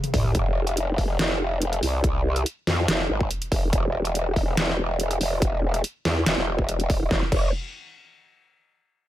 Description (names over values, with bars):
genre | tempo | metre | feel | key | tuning
heavy wobble dubstep | 142 BPM | 4/4 | half-time | F harmonic minor | A4 = 440 Hz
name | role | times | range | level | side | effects
dubstep drum kit | drums | 0.0-7.4 s | crash cymbal, hi-hat, snare drum, toms | -27 LUFS | equal | overdrive
growl bass | bass | 0.1-7.5 s | E1 to F2 | -24 LUFS | equal | chorus, overdrive
electronic kick drum | drums | 0.1-7.4 s | none | -25 LUFS | equal | overdrive
room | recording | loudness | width
little or no reverb | none | -21 LUFS | side -13 dB against mid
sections
0.3-7.1 A section; 7.1-8.8 B section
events
drum fill 0.0-0.3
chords
none